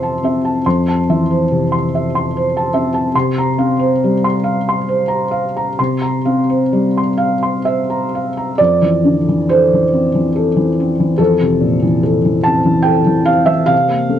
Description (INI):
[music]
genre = neoclassical minimalist piano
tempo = 63-74 BPM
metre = 3/4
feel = rubato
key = F major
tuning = A4 = 440 Hz
[part]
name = felt-muted upright piano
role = solo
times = 0.0-14.2 s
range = F2 to C6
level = -12 LUFS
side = equal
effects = none
[sound]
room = light reverb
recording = worn, warbling old tape, cassette tape, warbly pitch drift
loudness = -12 LUFS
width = side -10 dB against mid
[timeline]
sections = 0.0-8.6 A section; 8.6-14.2 B section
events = none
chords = 0.0 Fmaj7; 3.1 C7sus4; 8.6 Fmaj7